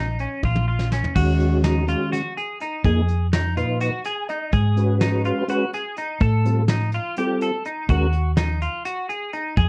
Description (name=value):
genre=progressive instrumental, band music in an uneven meter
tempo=250 BPM (eighths)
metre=7/8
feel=straight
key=unclear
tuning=A4 = 439 Hz
part: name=clean electric guitar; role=arpeggios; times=0.0-9.7 s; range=C#4 to A4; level=-29 LUFS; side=equal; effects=lush chorus
part: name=hollow-body short-scale fingered electric bass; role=bass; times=0.0-9.7 s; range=A#1 to A2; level=-23 LUFS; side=equal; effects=none
part: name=soft brush drum kit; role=drums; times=0.2-9.7 s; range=crash cymbal, hi-hat, kick drum, snare drum, toms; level=-27 LUFS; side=equal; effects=none
part: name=mellow tonewheel organ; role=accompaniment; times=1.2-8.1 s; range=A#2 to Ab5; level=-26 LUFS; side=equal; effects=chorus vibrato, slow rotary speaker
room=moderate small room reverb, RT60 0.5 s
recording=worn, warbling old tape, cassette tape, warbly pitch drift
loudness=-22 LUFS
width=mono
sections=0.0-1.2 A section; 1.2-9.7 B section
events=drum fill 0.4-1.2; tonewheel organ fill 3.8-4.5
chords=0.0 A#m; 1.2 D#madd9; 2.8 Fm7b5; 4.5 G#m; 6.2 F7/A; 7.9 D#madd9